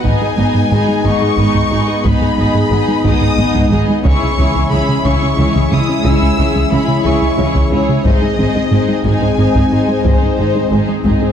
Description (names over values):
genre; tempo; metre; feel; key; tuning
cinematic, hybrid orchestral and electronic film score; 60 BPM (dotted quarters); 6/8; straight; unclear; A4 = 440 Hz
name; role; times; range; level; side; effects
rich studio violin section; melody; 0.0-11.1 s; B#4 to E6; -22 LUFS; left 4 dB; none
rich symphonic violin section; second line; 0.0-11.3 s; G#4 to D#5; -23 LUFS; left 3 dB; none
rich studio viola section; accompaniment; 0.0-11.3 s; G#3 to E4; -22 LUFS; right 1 dB; none
mellow French horn section; sustained chords; 0.0-11.3 s; B3 to E4; -23 LUFS; left 4 dB; none
plucky analog bass; riff; 0.0-11.3 s; C#2 to G#3; -18 LUFS; right 2 dB; none
rich symphonic cello section; bass; 0.0-11.1 s; G#2 to C#3; -21 LUFS; right 1 dB; none
rich symphonic double bass section; bass; 0.0-11.1 s; G#1 to C#2; -22 LUFS; right 2 dB; none
chorused pulse-width pad; sustained chords; 0.1-11.3 s; G#3 to E5; -21 LUFS; left 1 dB; none
harp-like synth pluck; arpeggios; 0.1-11.3 s; C#3 to G#4; -21 LUFS; left 3 dB; chorus, tape echo
taiko ensemble; drums; 0.1-11.3 s; none; -20 LUFS; equal; none
swell; sound effects; 10.8-11.3 s; none; -27 LUFS; left 5 dB; none
room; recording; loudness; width
wet recital hall reverb, RT60 1.6 s; dark, warm production; -11 LUFS; side -8 dB against mid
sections
0.0-11.3 A section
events
swell 10.8-11.3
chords
0.0 G#m; 4.0 C#m; 8.0 G#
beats
| 0.05 1.05 | 2.05 3.05 | 4.05 5.05 | 6.05 7.05 | 8.05 9.05 | 10.05 11.05